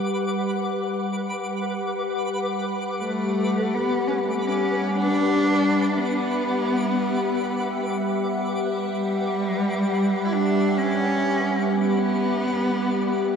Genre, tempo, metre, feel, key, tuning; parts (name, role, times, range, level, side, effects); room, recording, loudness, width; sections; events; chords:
ambient; free time; A4 = 440 Hz
soft additive organ-like pad; sustained chords; 0.0-13.4 s; G3 to F#5; -24 LUFS; left 1 dB; ensemble chorus, built-in reverb
twinkling granular texture; texture; 0.0-13.4 s; B4 to D6; -32 LUFS; equal; built-in reverb
warm cello; melody; 3.0-13.4 s; G3 to E4; -24 LUFS; equal
wet cathedral reverb, RT60 5.3 s; -21 LUFS; side -6 dB against mid
0.0-13.4 A section
0.0 Gmaj7; 3.0 Em7/G